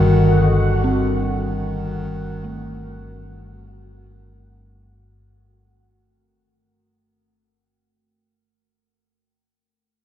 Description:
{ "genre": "dark ambient drone", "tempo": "56 BPM", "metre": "4/4", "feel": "straight", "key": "unclear", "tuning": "A4 = 440 Hz", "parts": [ { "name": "warm bass clarinet", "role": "melody", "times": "0.0-4.0 s", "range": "Eb3", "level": "-22 LUFS", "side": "equal", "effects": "diffuse ambient delay" }, { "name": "deep dark ambient pad", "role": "sustained chords", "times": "0.0-5.1 s", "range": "Gb4 to Gb5", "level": "-29 LUFS", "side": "left 4 dB", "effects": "chorus, built-in reverb" }, { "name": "dark detuned synth bell", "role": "arpeggios", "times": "0.0-8.9 s", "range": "A3 to A4", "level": "-29 LUFS", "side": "right 2 dB", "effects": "chorus, diffuse ambient delay" }, { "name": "analog drone", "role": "drone", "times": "0.0-5.2 s", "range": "G1 to G2", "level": "-21 LUFS", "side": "equal", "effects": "wide subtle chorus" }, { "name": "bubbling stepped-filter texture", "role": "texture", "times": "0.0-5.2 s", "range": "Gb4 to Gb5", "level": "-28 LUFS", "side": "left 2 dB", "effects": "chorus, built-in reverb" } ], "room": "wet huge ambient reverb, RT60 7.9 s", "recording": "dark, warm production", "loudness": "-17 LUFS", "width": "side -11 dB against mid", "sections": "0.0-5.1 A section", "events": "fade-out 0.0-5.1", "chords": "0.0 Ebm" }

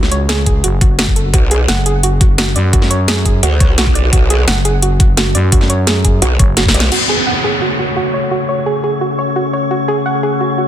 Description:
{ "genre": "dark technical drum and bass", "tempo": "172 BPM", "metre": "4/4", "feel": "straight", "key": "F# minor", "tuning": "A4 = 441 Hz", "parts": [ { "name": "growling FM bass", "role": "bass", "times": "0.0-6.7 s", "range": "F#1 to F#2", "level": "-15 LUFS", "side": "equal", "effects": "none" }, { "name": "drum and bass drum kit", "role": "drums", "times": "0.0-7.0 s", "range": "crash cymbal, hi-hat, snare drum", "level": "-16 LUFS", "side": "equal", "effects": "none" }, { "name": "soft round pluck", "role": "arpeggios", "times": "0.1-10.6 s", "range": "F#4 to F#5", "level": "-18 LUFS", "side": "right 3 dB", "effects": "chorus, sidechain pumping, dub echo" }, { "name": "electronic kick drum", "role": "drums", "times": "0.5-6.7 s", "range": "none", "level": "-12 LUFS", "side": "equal", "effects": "none" }, { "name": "growl bass", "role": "bass", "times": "1.3-6.9 s", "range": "B1 to D2", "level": "-13 LUFS", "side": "equal", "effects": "chorus" }, { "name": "metallic inharmonic drone", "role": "sustained chords", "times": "7.4-10.7 s", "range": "C#3 to C#5", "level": "-18 LUFS", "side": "left 4 dB", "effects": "chorus, built-in reverb, sidechain pumping" }, { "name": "downlifter", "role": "sound effects", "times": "6.9-9.7 s", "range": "none", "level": "-18 LUFS", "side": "right 1 dB", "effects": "none" } ], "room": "light reverb", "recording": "dense, heavily limited modern master", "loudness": "-11 LUFS", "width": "side -10 dB against mid", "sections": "0.0-6.9 A section; 6.9-10.7 B section", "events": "drum fill 6.6-6.9; band accent 6.8", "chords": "0.0 F#m; 1.3 Bm; 6.9 F#m" }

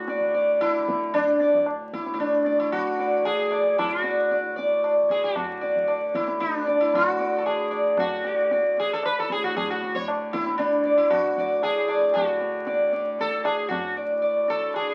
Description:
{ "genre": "indian classical, Hindustani", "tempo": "115 BPM", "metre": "4/4", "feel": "straight", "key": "D raga yaman", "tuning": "A4 = 440 Hz", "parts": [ { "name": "sitar", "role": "melody", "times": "0.0-14.9 s", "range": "D4 to D5", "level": "-24 LUFS", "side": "equal", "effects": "none" }, { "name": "tanpura", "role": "drone", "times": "0.0-14.9 s", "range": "D2 to D3", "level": "-38 LUFS", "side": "equal", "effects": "none" }, { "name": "tabla", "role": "percussion", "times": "0.1-14.9 s", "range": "none", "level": "-35 LUFS", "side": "equal", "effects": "none" } ], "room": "wet studio reverb, RT60 0.6 s", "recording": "very old 78 rpm record, vinyl crackle", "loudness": "-24 LUFS", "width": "mono", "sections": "0.0-14.9 A section", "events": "none", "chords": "none" }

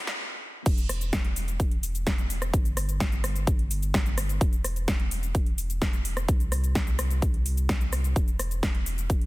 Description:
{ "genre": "EDM, festival progressive house", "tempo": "128 BPM", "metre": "4/4", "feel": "straight", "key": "E minor", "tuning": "A4 = 440 Hz", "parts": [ { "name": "saturated sub bass", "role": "bass", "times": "0.0-9.3 s", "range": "E1 to C2", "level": "-29 LUFS", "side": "equal", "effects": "sidechain pumping" }, { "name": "big-room dance drum kit", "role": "drums", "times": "0.1-9.3 s", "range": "crash cymbal, hi-hat, rim click, shaker, snare drum", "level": "-31 LUFS", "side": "equal", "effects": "none" }, { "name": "electronic kick drum", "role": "drums", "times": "0.7-9.2 s", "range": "none", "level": "-25 LUFS", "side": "equal", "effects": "none" } ], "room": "digital ambience", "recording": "dense, heavily limited modern master, high-pass filter", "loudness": "-24 LUFS", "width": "side -19 dB against mid", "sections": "0.7-9.3 A section", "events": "drum fill 0.0; stop 0.2-0.7; drop 0.7-9.3", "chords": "none" }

